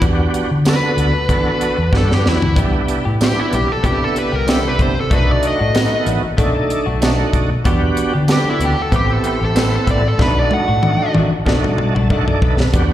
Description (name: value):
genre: straight-eighth soul blues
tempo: 94 BPM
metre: 4/4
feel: swing 55% on 16ths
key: unclear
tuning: A4 = 438 Hz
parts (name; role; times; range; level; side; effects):
- dark smooth lead guitar; melody; 0.0-11.1 s; E4 to F#5; -21 LUFS; left 1 dB; overdrive, slapback echo, analog delay
- bright tonewheel organ; accompaniment; 0.0-12.9 s; A3 to A5; -20 LUFS; right 2 dB; slow rotary speaker, overdrive, chorus vibrato, slapback echo
- vintage muted fingered electric bass; bass; 0.0-12.9 s; A1 to E3; -18 LUFS; equal; none
- tight funk drum kit; drums; 0.0-12.9 s; hi-hat, kick drum, snare drum, tambourine, toms; -18 LUFS; equal; none
- direct-recorded clean electric guitar; stabs; 2.6-12.5 s; D#3 to G4; -26 LUFS; left 6 dB; slapback echo
room: light reverb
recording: live gig heard through the venue's PA, recital hall reverb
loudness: -14 LUFS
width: side -12 dB against mid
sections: 0.0-12.7 A section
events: lead electric guitar solo 0.0-12.7; drum fill 1.9-2.6, 10.2-12.7; tonewheel organ fill 11.5-12.7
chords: 0.0 Em7; 2.6 Cmaj7; 5.1 B7#9; 7.7 Em7; 8.9 Am7; 10.2 B7#9